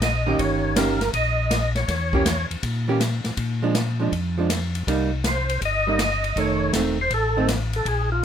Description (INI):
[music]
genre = soul jazz organ trio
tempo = 161 BPM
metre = 4/4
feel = swing 66% on 8ths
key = unclear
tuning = A4 = 439 Hz
[part]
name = percussive tonewheel organ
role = melody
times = 0.0-2.5, 5.3-8.2 s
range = F4 to Eb5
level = -24 LUFS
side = equal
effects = slow rotary speaker, overdrive, chorus vibrato
[part]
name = mellow tonewheel organ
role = bass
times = 0.0-8.2 s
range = E1 to Bb2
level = -25 LUFS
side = left 1 dB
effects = overdrive, chorus vibrato, slow rotary speaker
[part]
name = open jazz drum kit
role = drums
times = 0.0-8.0 s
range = hi-hat, kick drum, ride cymbal, snare drum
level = -27 LUFS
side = left 1 dB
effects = none
[part]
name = archtop guitar, miked and amplified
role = accompaniment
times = 0.3-7.5 s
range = Eb3 to G4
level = -24 LUFS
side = right 4 dB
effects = none
[sound]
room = light reverb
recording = minimal, uncompressed stereo recording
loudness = -20 LUFS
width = side -8 dB against mid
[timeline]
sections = 0.0-8.2 A section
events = none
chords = 0.0 Eb7; 1.9 Edim7; 3.4 Bb7; 4.9 Cm7; 6.4 F7